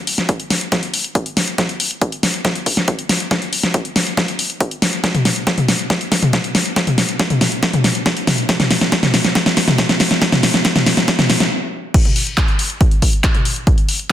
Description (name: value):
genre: trance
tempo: 139 BPM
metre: 4/4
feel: straight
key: none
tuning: none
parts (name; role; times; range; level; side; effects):
- big-room dance drum kit; drums; 0.1-14.1 s; crash cymbal, handclaps, hi-hat, snare drum, toms; -15 LUFS; equal; studio reverb
- electronic kick drum; drums; 0.3-13.8 s; none; -17 LUFS; equal; high-pass filter on kick, studio reverb
room: moderate digital room reverb, RT60 1.2 s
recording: dense, heavily limited modern master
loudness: -14 LUFS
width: side -11 dB against mid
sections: 0.0-11.9 A section; 11.9-14.1 B section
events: build-up 0.0-11.9; drum fill 0.0-11.5; stop 11.5-11.9; drop 11.9-14.1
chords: none